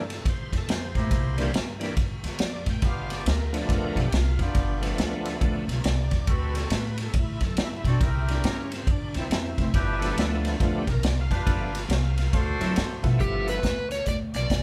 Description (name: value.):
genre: electric blues shuffle.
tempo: 139 BPM.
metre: 4/4.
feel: swing 63% on 8ths.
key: G mixolydian.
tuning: A4 = 440 Hz.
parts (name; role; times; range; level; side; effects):
bright tonewheel organ; accompaniment; 0.0-13.6 s; G2 to G5; -35 LUFS; equal; overdrive, chorus vibrato, slow rotary speaker.
upright bass; bass; 0.0-14.6 s; F1 to B2; -30 LUFS; equal; none.
vintage drum kit; drums; 0.1-14.6 s; hi-hat, kick drum, ride cymbal, snare drum; -29 LUFS; equal; none.
clear horn section; stabs; 1.0-13.1 s; F3 to C5; -35 LUFS; equal; none.
overdriven slide guitar; melody; 13.2-14.6 s; G4 to D5; -31 LUFS; equal; none.
room: moderate large studio reverb, RT60 0.9 s.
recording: band playing live in one room.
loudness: -26 LUFS.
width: mono.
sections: 0.0-13.2 A section; 13.2-14.6 B section.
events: none.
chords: 0.0 C7; 2.8 G7; 6.3 D7; 8.0 C7; 9.7 G7; 12.3 D7; 13.2 G7.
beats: 0.25 0.68 | 1.11 1.54 1.97 2.40 | 2.83 3.26 3.69 4.12 | 4.55 4.98 5.41 5.84 | 6.27 6.70 7.14 7.57 | 8.00 8.43 8.87 9.30 | 9.73 10.16 10.60 11.03 | 11.46 11.90 12.33 12.76 | 13.20 13.63 14.07 14.50.